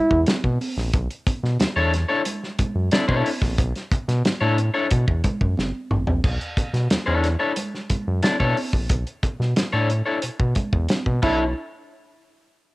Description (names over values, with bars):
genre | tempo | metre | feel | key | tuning
funk | 90 BPM | 4/4 | straight | B minor | A4 = 437 Hz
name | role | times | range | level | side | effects
mellow trombone | second line | 0.0-0.2, 11.2-11.5 s | E4 | -20 LUFS | right 1 dB | cassette tape, plate reverb
round analog bass | bass | 0.1-11.5 s | F#1 to B2 | -22 LUFS | equal | none
warm soul drum kit | drums | 0.1-11.4 s | crash cymbal, hi-hat, kick drum, snare drum, toms | -23 LUFS | equal | cassette tape
congas | percussion | 0.3-11.5 s | none | -31 LUFS | right 2 dB | none
electric guitar at the edge of break-up | accompaniment | 1.8-11.4 s | D4 to D5 | -23 LUFS | left 3 dB | spring reverb, cassette tape
room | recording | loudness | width
light reverb | home recording on cassette | -20 LUFS | side -20 dB against mid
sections
0.0-6.2 A section; 6.2-11.6 B section; 11.6-12.7 C section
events
drum fill 5.6-6.2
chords
0.0 Bm11; 11.6 N.C.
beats
0.27 | 0.94 1.60 2.26 2.92 | 3.59 4.25 4.91 5.58 | 6.24 6.91 7.57 8.23 | 8.90 9.57 10.23 10.90